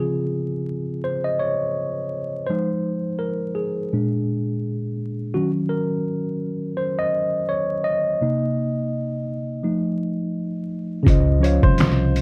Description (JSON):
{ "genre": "lo-fi hip hop", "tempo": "84 BPM", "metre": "4/4", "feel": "swing 59% on 16ths", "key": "Db major", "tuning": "A4 = 440 Hz", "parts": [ { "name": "mellow tine electric piano", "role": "accompaniment", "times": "0.0-12.2 s", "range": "Bb2 to F5", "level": "-24 LUFS", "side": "equal", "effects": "cassette tape, low-pass filter" }, { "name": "upright bass", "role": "bass", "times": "11.1-12.2 s", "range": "C2 to Db2", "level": "-22 LUFS", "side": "equal", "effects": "none" }, { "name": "trip hop sampler-style drum kit", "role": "drums", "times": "11.1-12.2 s", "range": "finger snaps, hi-hat, kick drum, snare drum", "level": "-20 LUFS", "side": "equal", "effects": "none" }, { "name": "warm upright piano", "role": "melody", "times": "11.4-12.2 s", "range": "C5 to Db5", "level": "-29 LUFS", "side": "equal", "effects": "low-pass filter, analog delay" } ], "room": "moderate studio reverb, RT60 0.5 s", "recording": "dark, warm production, vinyl crackle", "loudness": "-23 LUFS", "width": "mono", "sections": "0.0-11.1 A section; 11.1-12.2 B section", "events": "tine electric piano solo 0.0-11.1", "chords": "0.0 Dbmaj7; 2.5 Fm7; 3.9 Bb7; 5.3 Ebm7; 8.2 Cm7; 9.6 F7; 11.1 Dbmaj7", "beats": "0.35 1.06 1.78 | 2.49 3.21 3.92 4.63 | 5.35 6.06 6.78 7.49 | 8.21 8.92 9.63 10.35 | 11.06 11.78" }